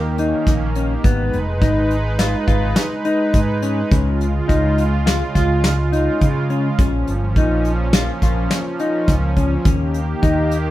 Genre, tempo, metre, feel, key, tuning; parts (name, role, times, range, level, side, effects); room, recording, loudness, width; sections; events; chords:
progressive instrumental, band music in an uneven meter; 104 BPM; 5/4; straight; Eb mixolydian; A4 = 440 Hz
warm analog pad; accompaniment; 0.0-10.7 s; Bb2 to Cb5; -22 LUFS; right 2 dB; chorus
fretless electric bass; bass; 0.0-10.7 s; F1 to Db3; -20 LUFS; equal
mellow electric guitar; arpeggios; 0.2-10.6 s; Cb4 to F4; -22 LUFS; left 3 dB
soft brush drum kit; drums; 0.2-10.7 s; hi-hat, kick drum, snare drum; -18 LUFS; equal
light reverb; band playing live in one room; -15 LUFS; side -15 dB against mid
0.0-10.7 A section
0.0 Eb; 1.1 Abm; 3.9 Db; 6.8 Bbm; 9.7 Eb